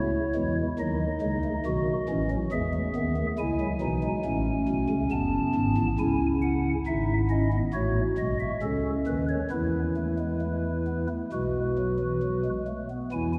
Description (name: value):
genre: classical, baroque-style 4-part fugue for pipe organ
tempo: 68 BPM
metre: 4/4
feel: uneven beats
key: unclear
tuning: A4 = 441 Hz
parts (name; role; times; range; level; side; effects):
- pipe organ, stopped flute; solo; 0.0-13.4 s; F#1 to A5; -27 LUFS; equal; none
room: wet church reverb, RT60 3.4 s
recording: none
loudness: -27 LUFS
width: mono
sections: 0.0-13.1 A section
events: none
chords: 0.0 F#m (rootless); 0.8 B7; 2.5 E; 4.3 Amaj7; 6.0 C#m; 7.7 F#m/A; 9.5 Bsus4/E; 11.3 B5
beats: 0.79 1.66 | 2.53 3.39 4.25 5.12 | 5.99 6.86 7.73 8.62 | 9.51 10.42 11.32 12.23 | 13.13